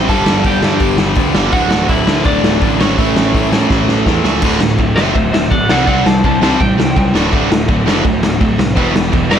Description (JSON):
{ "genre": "punk rock", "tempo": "166 BPM", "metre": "4/4", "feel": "straight", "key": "D mixolydian from 4.4 s", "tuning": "A4 = 437 Hz", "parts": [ { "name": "lightly driven lead guitar", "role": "melody", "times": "0.0-7.1, 9.3-9.4 s", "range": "C#4 to A5", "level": "-18 LUFS", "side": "equal", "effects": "none" }, { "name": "biting overdriven guitar", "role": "riff", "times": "0.0-9.4 s", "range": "D2 to C4", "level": "-19 LUFS", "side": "left 10 dB", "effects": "none" }, { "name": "distorted electric guitar", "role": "riff", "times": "0.0-9.4 s", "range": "D2 to C4", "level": "-18 LUFS", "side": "right 11 dB", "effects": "overdrive" }, { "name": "distorted electric guitar", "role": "riff", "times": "0.0-9.4 s", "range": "D2 to C5", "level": "-21 LUFS", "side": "equal", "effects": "distortion" }, { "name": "fuzz picked electric bass", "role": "bass", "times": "0.0-9.4 s", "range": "D1 to A2", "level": "-19 LUFS", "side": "equal", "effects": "overdrive" }, { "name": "raw garage drum kit", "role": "drums", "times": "0.1-9.4 s", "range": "crash cymbal, hi-hat, kick drum, snare drum", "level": "-15 LUFS", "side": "equal", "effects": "none" } ], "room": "little or no reverb", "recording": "none", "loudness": "-11 LUFS", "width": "side -8 dB against mid", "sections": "0.0-4.4 A section; 4.4-9.4 B section", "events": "drum fill 3.7-4.4; lead electric guitar solo 4.4-9.4", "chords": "0.1 G5; 1.5 D; 3.0 A; 4.4 D; 5.7 C; 7.1 D; 8.8 Em", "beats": "| 0.09 0.46 0.82 1.18 | 1.54 1.90 2.26 2.62 | 2.98 3.35 3.71 4.07 | 4.43 4.79 5.16 5.52 | 5.88 6.24 6.60 6.96 | 7.32 7.69 8.05 8.41 | 8.77 9.13" }